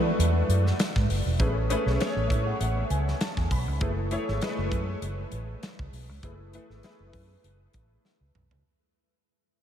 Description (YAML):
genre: polished 1980s jazz-funk pop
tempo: 99 BPM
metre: 4/4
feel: swing 54% on 16ths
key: F# minor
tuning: A4 = 442 Hz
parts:
  - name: warm baby grand piano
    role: accompaniment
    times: 0.0-8.7 s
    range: G#3 to B5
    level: -30 LUFS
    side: left 1 dB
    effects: ensemble chorus
  - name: vintage muted fingered electric bass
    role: bass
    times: 0.0-8.6 s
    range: E1 to E3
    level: -27 LUFS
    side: equal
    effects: none
  - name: modern studio drum kit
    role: drums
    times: 0.2-8.6 s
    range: hi-hat, kick drum, snare drum, toms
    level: -30 LUFS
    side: equal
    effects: none
room: moderate huge ambient reverb, RT60 8.5 s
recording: dreamy mix soaked in reverb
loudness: -24 LUFS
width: side -10 dB against mid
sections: 0.0-8.6 A section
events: fade-out 0.0-8.6; grand piano fill 2.0-3.8; drum fill 8.0-8.6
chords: 0.0 E7sus4; 1.4 Amaj9; 3.8 F#m11